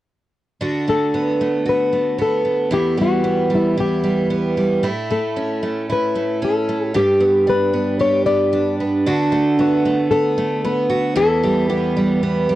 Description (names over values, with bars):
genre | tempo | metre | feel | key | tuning
pop | 114 BPM | 4/4 | straight | D major | A4 = 440 Hz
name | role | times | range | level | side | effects
picked twelve-string acoustic guitar | accompaniment | 0.6-12.6 s | E2 to G4 | -18 LUFS | right 2 dB | none
nylon-string guitar | melody | 0.9-12.4 s | E4 to D5 | -20 LUFS | left 4 dB | none
room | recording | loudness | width
moderate booth ambience, RT60 0.2 s | dry, close 1970s-style studio recording | -16 LUFS | side -15 dB against mid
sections
0.6-9.1 A section; 9.1-12.6 B section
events
none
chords
0.6 D6; 2.7 Em; 4.8 A; 6.9 G; 9.1 D6; 11.2 Em